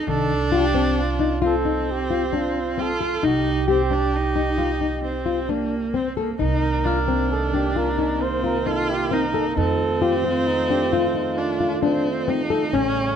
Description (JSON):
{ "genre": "contemporary instrumental, chamber music in an uneven meter", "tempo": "133 BPM", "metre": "7/4", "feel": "straight", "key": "C dorian", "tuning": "A4 = 437 Hz", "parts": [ { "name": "clear viola", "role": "second line", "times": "0.0-13.2 s", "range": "Bb3 to F4", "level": "-25 LUFS", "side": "right 2 dB", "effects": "none" }, { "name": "upright bass", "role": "bass", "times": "0.0-13.2 s", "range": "A1 to F2", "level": "-28 LUFS", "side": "right 2 dB", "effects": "none" }, { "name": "breathy flugelhorn", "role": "melody", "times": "0.1-13.2 s", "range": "Eb4 to C#5", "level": "-27 LUFS", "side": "right 4 dB", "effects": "none" }, { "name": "nylon-string guitar", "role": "arpeggios", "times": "0.1-13.0 s", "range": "Eb3 to A4", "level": "-24 LUFS", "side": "left 6 dB", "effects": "none" }, { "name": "warm brass ensemble", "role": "sustained chords", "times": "6.4-13.2 s", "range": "C3 to F4", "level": "-29 LUFS", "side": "right 3 dB", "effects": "none" }, { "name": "glockenspiel with soft plastic mallets", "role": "texture", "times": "6.9-7.7 s", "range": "F6", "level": "-35 LUFS", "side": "left 1 dB", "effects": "none" } ], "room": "moderate recital hall reverb, RT60 1.5 s", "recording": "close, detailed microphones", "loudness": "-19 LUFS", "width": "side -8 dB against mid", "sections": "0.0-6.4 A section; 6.4-13.2 B section", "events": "none", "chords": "0.1 F7/C; 3.2 Cm7; 9.6 F7" }